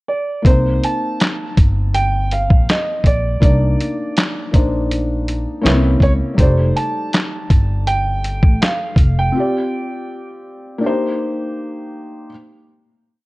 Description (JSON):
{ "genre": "lo-fi hip hop", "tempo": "81 BPM", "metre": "4/4", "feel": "swing 56% on 16ths", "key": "C dorian", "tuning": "A4 = 437 Hz", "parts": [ { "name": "dark upright piano", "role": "melody", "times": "0.1-10.3 s", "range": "C5 to A5", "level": "-22 LUFS", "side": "right 2 dB", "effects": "low-pass filter, tape echo" }, { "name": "felt-muted upright piano", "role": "accompaniment", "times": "0.4-12.3 s", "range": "G3 to D5", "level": "-22 LUFS", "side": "left 1 dB", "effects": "cassette tape, low-pass filter" }, { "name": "upright bass", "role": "bass", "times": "0.5-9.3 s", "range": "F1 to Db2", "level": "-18 LUFS", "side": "equal", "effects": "none" }, { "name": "lo-fi sampler-style drum kit", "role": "drums", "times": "0.5-9.2 s", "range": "handclaps, hi-hat, kick drum, snare drum", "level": "-14 LUFS", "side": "equal", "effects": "none" } ], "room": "light reverb, studio reverb", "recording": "cassette tape", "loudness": "-14 LUFS", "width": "side -21 dB against mid", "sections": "0.0-0.5 pickup bar; 0.5-12.3 A section", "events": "none", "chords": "0.5 Cm9; 5.6 C7b9; 6.4 F13; 9.3 G7sus4; 10.8 Cm7", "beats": "| 0.45 1.19 1.93 2.67 | 3.42 4.16 4.90 5.64 | 6.38 7.12 7.86 8.60 | 9.34 10.08 10.82 11.56" }